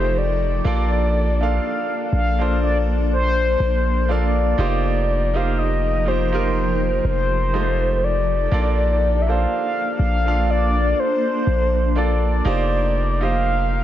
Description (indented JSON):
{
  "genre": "contemporary R&B",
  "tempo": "61 BPM",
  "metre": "4/4",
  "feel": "swing 54% on 16ths",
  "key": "Bb major",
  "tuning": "A4 = 440 Hz",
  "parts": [
    { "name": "mellow horn-like synth lead", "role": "melody", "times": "0.0-13.8 s", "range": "C5 to F5", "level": "-23 LUFS", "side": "left 1 dB", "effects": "chorus" },
    { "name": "clear grand piano", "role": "accompaniment", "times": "0.0-13.8 s", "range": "Ab3 to F5", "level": "-25 LUFS", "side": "right 3 dB", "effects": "none" },
    { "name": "granular cloud pad", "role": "sustained chords", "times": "0.0-13.8 s", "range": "F3 to Bb4", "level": "-28 LUFS", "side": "left 1 dB", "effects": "built-in reverb" },
    { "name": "long sustained 808-style bass", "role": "bass", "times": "0.0-13.8 s", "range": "F1 to Bb1", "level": "-20 LUFS", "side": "equal", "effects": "none" }
  ],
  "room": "light reverb",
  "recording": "nothing above 7.7 kHz",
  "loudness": "-17 LUFS",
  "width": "side -12 dB against mid",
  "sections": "0.0-13.8 A section",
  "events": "none",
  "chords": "0.0 F9; 0.6 Bbmaj7; 4.6 F9sus4; 7.5 F9; 8.5 Bbmaj7; 12.5 F9sus4",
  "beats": "| 0.65 1.63 2.62 3.60 | 4.58 5.57 6.55 7.53 | 8.52 9.50 10.48 11.47 | 12.45 13.43"
}